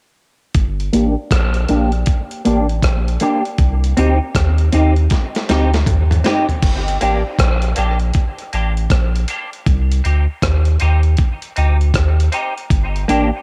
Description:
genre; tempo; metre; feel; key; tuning
dub reggae; 79 BPM; 4/4; swing 63% on 16ths; G minor; A4 = 439 Hz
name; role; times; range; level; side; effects
dusty soul sampler-style drum kit; drums; 0.5-13.3 s; crash cymbal, hi-hat, kick drum, rim click, snare drum, toms; -20 LUFS; equal; cassette tape
round analog bass; bass; 0.6-13.3 s; G1 to Eb2; -18 LUFS; equal; transformer saturation
clean electric guitar; accompaniment; 0.9-13.3 s; Bb3 to G4; -22 LUFS; equal; ensemble chorus, high-pass filter, low-pass filter, dub echo
room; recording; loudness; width
light reverb, digital ambience; home recording on cassette; -16 LUFS; mono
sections
0.5-6.6 A section; 6.6-13.4 B section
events
filter sweep on clean electric guitar 0.5-12.7; drum fill 5.1-6.6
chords
0.5 Gm; 3.6 Cm; 6.6 Gm; 9.7 Cm; 12.7 Gm

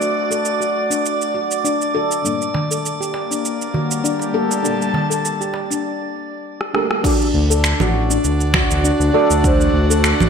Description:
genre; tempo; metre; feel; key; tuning
organic downtempo; 100 BPM; 4/4; swing 54% on 16ths; unclear; A4 = 440 Hz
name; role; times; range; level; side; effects
deep mellow chord stab; accompaniment; 0.0-10.3 s; G3 to D5; -22 LUFS; right 5 dB; chorus, phaser, sidechain pumping, ping-pong delay
airy breathy pad; sustained chords; 0.0-10.3 s; G3 to A5; -23 LUFS; right 1 dB; chorus, sidechain pumping
organic electronic drum kit; drums; 0.0-10.3 s; congas, crash cymbal, finger snaps, rim click, shaker; -21 LUFS; right 2 dB; gated reverb
drifting glass-harmonics texture; texture; 0.0-5.8 s; D5; -26 LUFS; right 2 dB; chorus, built-in reverb
handpan; arpeggios; 0.3-10.3 s; D4 to A4; -22 LUFS; left 6 dB; low-pass filter, ping-pong delay
darbuka; percussion; 2.5-5.7 s; none; -25 LUFS; right 2 dB; none
electronic kick drum; drums; 7.0-9.6 s; none; -20 LUFS; equal; overdrive
smooth gliding synth bass; bass; 7.3-10.3 s; A1 to D2; -18 LUFS; equal; sidechain pumping
room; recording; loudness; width
moderate plate reverb, RT60 1.6 s; bright 1980s-style digital production; -16 LUFS; side -6 dB against mid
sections
0.0-7.0 A section; 7.0-10.3 B section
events
filter sweep on synth stab 0.0-7.0; break 5.8-7.0; drum fill 6.6-7.0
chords
0.0 D; 2.2 Gmadd9; 7.0 D

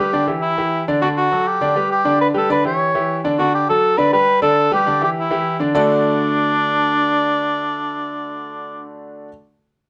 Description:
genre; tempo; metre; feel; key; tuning
latin; 203 BPM; 4/4; straight; D major; A4 = 438 Hz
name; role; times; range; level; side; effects
mellow cor anglais; melody; 0.0-8.9 s; D4 to C#5; -20 LUFS; equal; none
clear concert grand piano; accompaniment; 0.0-9.3 s; D3 to D5; -22 LUFS; equal; none
room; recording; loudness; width
moderate studio reverb, RT60 0.6 s; none; -17 LUFS; mono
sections
0.0-3.4 A section; 3.4-5.8 B section; 5.8-8.1 C section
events
none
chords
0.4 Dsus24; 1.0 D; 1.6 G; 2.2 Em7; 2.8 Dsus24; 3.4 D; 4.0 G; 4.6 Em7; 5.2 Dsus24; 5.8 D

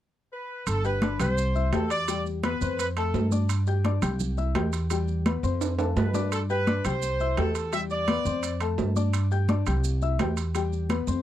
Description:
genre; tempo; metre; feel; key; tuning
latin, salsa; 170 BPM; 4/4; straight; G major; A4 = 440 Hz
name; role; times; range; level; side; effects
bright horn section; melody; 0.3-3.3, 6.0-8.6 s; A4 to E5; -29 LUFS; right 1 dB; none
upright bass; bass; 0.7-11.2 s; G1 to G2; -27 LUFS; right 1 dB; none
congas; percussion; 0.7-11.2 s; none; -30 LUFS; left 1 dB; none
maracas; percussion; 0.7-11.2 s; none; -41 LUFS; right 18 dB; none
timbales; percussion; 0.7-11.1 s; none; -33 LUFS; right 8 dB; none
warm upright piano; accompaniment; 0.8-11.2 s; G3 to G6; -32 LUFS; left 10 dB; none
room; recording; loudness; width
little or no reverb; dry, close 1970s-style studio recording; -24 LUFS; side -12 dB against mid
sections
0.7-11.2 A section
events
drum fill 5.6-6.3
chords
0.0 N.C.; 0.7 G; 1.4 C; 2.1 Em; 2.8 F; 3.5 G5; 4.2 C; 4.9 Em; 5.6 F; 6.3 G; 7.0 C6; 7.7 Em7; 8.4 F; 9.1 G5; 9.8 C; 10.5 Em

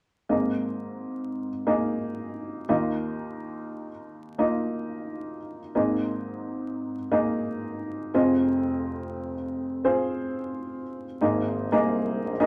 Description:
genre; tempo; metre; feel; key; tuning
pop; 88 BPM; 4/4; straight; Ab major; A4 = 440 Hz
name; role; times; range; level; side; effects
dark upright piano; accompaniment; 0.3-12.5 s; F1 to Eb5; -28 LUFS; equal; none
clear tuba; bass; 11.2-12.5 s; Ab1 to C2; -33 LUFS; equal; none
room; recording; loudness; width
wet studio reverb, RT60 0.8 s; vinyl crackle; -28 LUFS; mono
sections
0.3-11.2 A section; 11.2-12.5 B section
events
none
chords
0.3 Absus2; 2.7 Ebsus2; 5.8 Absus2; 8.1 Fm7; 11.2 Absus2

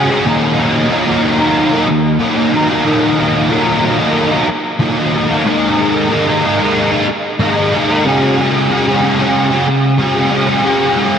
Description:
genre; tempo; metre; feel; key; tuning
rock; 92 BPM; 4/4; straight; Eb minor; A4 = 440 Hz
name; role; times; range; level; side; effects
overdriven electric guitar; solo; 0.0-11.2 s; Eb2 to Ab4; -11 LUFS; equal; ensemble chorus, diffuse ambient delay
room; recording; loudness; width
wet huge ambient reverb, RT60 4.7 s; dreamy mix soaked in reverb; -11 LUFS; side -8 dB against mid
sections
0.0-11.2 A section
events
none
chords
0.3 Ebm; 5.5 Absus2; 8.1 Dbsus4

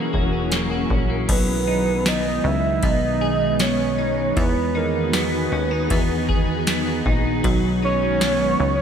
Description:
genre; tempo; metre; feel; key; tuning
dream pop; 78 BPM; 4/4; straight; B major; A4 = 440 Hz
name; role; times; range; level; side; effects
warbly nostalgic lead; melody; 0.0-8.8 s; A#4 to E5; -24 LUFS; right 2 dB; chorus, slapback echo, ping-pong delay
ethereal airy pad; sustained chords; 0.0-8.8 s; D#3 to A#4; -25 LUFS; right 1 dB; ensemble chorus, built-in reverb
clean electric guitar; arpeggios; 0.0-8.8 s; E3 to G#4; -25 LUFS; left 1 dB; analog chorus, slapback echo, ping-pong delay
plucky analog bass; bass; 0.1-8.8 s; E1 to E2; -26 LUFS; equal; none
booming analog drum machine; drums; 0.1-8.4 s; crash cymbal, hi-hat, kick drum, ride cymbal, snare drum, tambourine; -24 LUFS; equal; overdrive
room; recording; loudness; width
moderate lush hall reverb, RT60 2.9 s; big arena sound; -18 LUFS; side -8 dB against mid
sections
0.0-1.3 A section; 1.3-8.8 B section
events
none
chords
0.0 F#7; 1.3 B6; 4.4 Emaj7; 7.4 B6

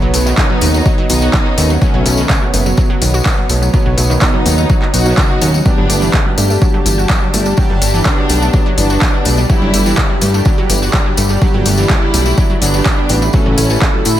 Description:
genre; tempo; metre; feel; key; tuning
melodic techno; 125 BPM; 4/4; straight; unclear; A4 = 440 Hz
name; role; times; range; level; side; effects
wide unison pluck; arpeggios; 0.0-14.1 s; C#3 to F#4; -21 LUFS; equal; cassette tape, sidechain pumping, tape echo
analog synth brass; stabs; 0.0-14.2 s; B2 to A4; -22 LUFS; right 3 dB; chorus, sidechain pumping, tape echo
fat analog bass; bass; 0.0-14.2 s; F#1 to A2; -14 LUFS; equal; sidechain pumping
bowed-like drone; drone; 0.2-14.2 s; F#2 to D3; -30 LUFS; equal; none
airy breathy pad; texture; 0.0-14.2 s; B3 to B5; -23 LUFS; equal; chorus, sidechain pumping
deep house drum kit; drums; 0.1-14.2 s; handclaps, hi-hat; -19 LUFS; equal; overdrive, sidechain pumping on hats
tambourine; percussion; 0.1-14.2 s; none; -23 LUFS; left 5 dB; none
soft supersaw; melody; 0.4-14.0 s; G3 to F#4; -21 LUFS; equal; cassette tape, sidechain pumping, diffuse ambient delay
rich studio violin section; second line; 0.4-14.0 s; C#4 to F#4; -24 LUFS; equal; sidechain pumping, tape echo
electronic kick drum; drums; 0.4-13.9 s; none; -14 LUFS; equal; overdrive
room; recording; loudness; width
light reverb; none; -10 LUFS; side -12 dB against mid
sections
0.0-14.2 A section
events
none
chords
0.0 Badd9; 5.7 Gadd9; 13.3 Aadd9

